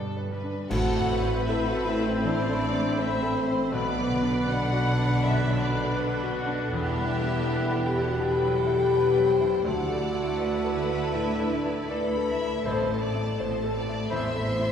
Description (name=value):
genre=cinematic, emotional film score for orchestra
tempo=81 BPM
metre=4/4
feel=rubato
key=A dorian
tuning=A4 = 440 Hz
part: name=rich studio violin section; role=melody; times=0.0-14.7 s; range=F#4 to F#5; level=-34 LUFS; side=left 2 dB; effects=none
part: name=mellow clarinet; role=second line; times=0.0-14.4 s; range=G4 to D5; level=-38 LUFS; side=left 2 dB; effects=none
part: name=bright baby grand piano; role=accompaniment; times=0.0-14.7 s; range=A1 to F#5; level=-34 LUFS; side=equal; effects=none
part: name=mellow French horn section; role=sustained chords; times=0.0-14.7 s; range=D3 to C5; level=-28 LUFS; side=left 2 dB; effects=none
part: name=concert harp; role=arpeggios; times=0.0-14.7 s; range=G2 to B5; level=-35 LUFS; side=left 3 dB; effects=none
part: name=clear studio double bass section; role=bass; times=0.0-14.7 s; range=E1 to G2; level=-33 LUFS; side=right 2 dB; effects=none
part: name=clear studio viola section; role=accompaniment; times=0.3-14.7 s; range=D3 to E4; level=-36 LUFS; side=right 2 dB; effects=none
part: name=bright large flute ensemble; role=second line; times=0.7-14.4 s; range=A5 to B5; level=-36 LUFS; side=equal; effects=none
part: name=clear studio violin section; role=second line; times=0.7-14.7 s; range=B4 to C6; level=-38 LUFS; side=left 2 dB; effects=none
part: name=warm cor anglais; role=second line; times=0.7-14.4 s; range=E5 to F#5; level=-39 LUFS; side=right 1 dB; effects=none
part: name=rich studio cello section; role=bass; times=0.7-14.7 s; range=D2 to B2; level=-34 LUFS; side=right 1 dB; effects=none
part: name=clash cymbals and concert bass drum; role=percussion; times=0.7-2.2 s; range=none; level=-35 LUFS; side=right 1 dB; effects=none
room=wet concert hall reverb, RT60 2.0 s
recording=heard from further back in the room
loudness=-23 LUFS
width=side -8 dB against mid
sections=0.7-14.7 A section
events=band accent 0.7-1.5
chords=0.0 G; 0.7 Amadd9; 3.7 Bm; 6.7 Emadd9; 9.7 Dsus2; 12.7 Amadd9